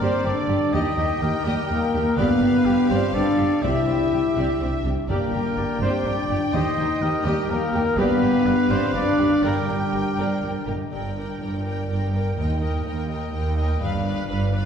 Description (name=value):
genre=cinematic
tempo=124 BPM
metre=3/4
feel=straight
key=G minor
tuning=A4 = 440 Hz
part: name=clear symphonic violin section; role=melody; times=0.0-14.7 s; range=D5 to G5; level=-33 LUFS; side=left 4 dB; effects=none
part: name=large flute ensemble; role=second line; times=0.0-10.7 s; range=F5 to Bb5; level=-40 LUFS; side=left 1 dB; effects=none
part: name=mellow clarinet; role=second line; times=0.0-10.9 s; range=none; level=barely audible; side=none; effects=none
part: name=warm oboe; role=second line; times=0.0-10.7 s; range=G4 to D5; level=-33 LUFS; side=right 2 dB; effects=none
part: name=warm symphonic violin section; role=second line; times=0.0-14.7 s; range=G4 to Eb5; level=-35 LUFS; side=equal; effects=none
part: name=rich symphonic viola section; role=accompaniment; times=0.0-14.7 s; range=G4 to B4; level=-32 LUFS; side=right 3 dB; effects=none
part: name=mellow French horn section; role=sustained chords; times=0.0-10.4 s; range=G3 to E4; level=-22 LUFS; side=left 2 dB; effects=none
part: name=concert harp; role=arpeggios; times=0.0-14.7 s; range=G2 to G5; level=-31 LUFS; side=left 3 dB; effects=none
part: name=warm trumpet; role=stabs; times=0.0-10.4 s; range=G4 to E5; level=-28 LUFS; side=equal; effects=none
part: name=rich symphonic double bass section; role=bass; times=0.0-14.7 s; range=G1 to Eb2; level=-28 LUFS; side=right 2 dB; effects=none
part: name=warm chamber cello section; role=bass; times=0.0-14.7 s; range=Eb2 to C3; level=-29 LUFS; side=right 2 dB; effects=none
part: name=timpani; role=percussion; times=5.1-5.8 s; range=G2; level=-38 LUFS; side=right 1 dB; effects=none
room=wet scoring stage reverb, RT60 1.7 s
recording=heard from further back in the room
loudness=-20 LUFS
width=side -7 dB against mid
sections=0.0-10.9 A section; 10.9-14.7 B section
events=none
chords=0.0 Gm; 0.7 Eb; 2.2 G7; 3.6 Cadd9; 5.1 Gm; 6.5 Eb; 8.0 G7; 9.4 Gm; 12.4 Eb; 13.8 G7